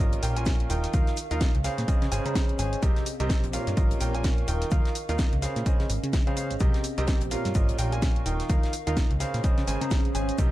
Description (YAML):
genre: piano house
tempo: 127 BPM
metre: 4/4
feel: swing 59% on 16ths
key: unclear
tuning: A4 = 437 Hz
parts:
  - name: clear baby grand piano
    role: riff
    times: 0.0-10.5 s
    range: Bb2 to Bb5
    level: -31 LUFS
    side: right 1 dB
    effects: sidechain pumping, ping-pong delay
  - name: plucky analog bass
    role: bass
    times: 0.0-10.5 s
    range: Eb1 to Db3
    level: -30 LUFS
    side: equal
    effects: sidechain pumping
  - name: warbly tape-like pad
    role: texture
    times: 0.1-10.5 s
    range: C4 to Db6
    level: -36 LUFS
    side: right 1 dB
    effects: chorus, built-in reverb, sidechain pumping
  - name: damped 70s drum kit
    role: drums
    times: 0.1-10.5 s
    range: hi-hat, shaker, snare drum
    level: -44 LUFS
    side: left 3 dB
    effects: sidechain pumping on hats, high-pass filter on hats, high-pass filter on snare, sidechain pumping on perc, high-pass filter on perc, high-pass filter on room
  - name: garage drum kit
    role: drums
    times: 0.1-10.5 s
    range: hi-hat, shaker, snare drum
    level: -35 LUFS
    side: equal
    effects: none
  - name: electronic kick drum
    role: drums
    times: 0.5-10.5 s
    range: none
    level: -24 LUFS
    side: equal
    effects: none
room: studio ambience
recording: dark, warm production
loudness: -23 LUFS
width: side -15 dB against mid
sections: 0.0-10.5 A section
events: none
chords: 0.0 Bbm; 0.7 Ebsus2; 1.6 Dbmaj7; 2.8 Cm7; 3.5 Bbm; 4.5 Ebsus2; 5.4 Dbmaj7; 6.6 Cm7; 7.3 Bbm; 8.3 Ebsus2; 9.2 Dbmaj7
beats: 0.46 | 0.94 1.41 1.88 2.35 | 2.83 3.30 3.77 4.24 | 4.71 5.19 5.66 6.13 | 6.61 7.08 7.55 8.02 | 8.49 8.97 9.44 9.91 | 10.38